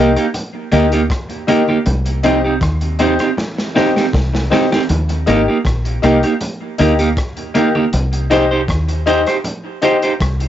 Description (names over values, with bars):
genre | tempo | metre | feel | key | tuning
roots reggae | 79 BPM | 4/4 | straight | Eb major | A4 = 440 Hz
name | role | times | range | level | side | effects
electric guitar at the edge of break-up | accompaniment | 0.0-10.1 s | Bb3 to C5 | -16 LUFS | right 4 dB | analog delay
clear grand piano | stabs | 0.0-10.0 s | Eb4 to Eb5 | -16 LUFS | left 6 dB | none
deep dub fingered electric bass | bass | 0.0-10.5 s | Ab1 to Eb2 | -17 LUFS | equal | none
crunchy breakbeat drum kit | drums | 0.2-10.5 s | hi-hat, kick drum, rim click, snare drum | -23 LUFS | equal | cassette tape, analog delay
congas | percussion | 0.3-10.0 s | none | -28 LUFS | right 1 dB | none
room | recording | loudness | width
light reverb | home recording on cassette, nothing above 7.6 kHz | -13 LUFS | side -11 dB against mid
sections
0.0-10.5 A section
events
drum fill 3.4-4.9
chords
0.0 Eb; 1.9 Cm; 4.9 Eb; 7.9 Cm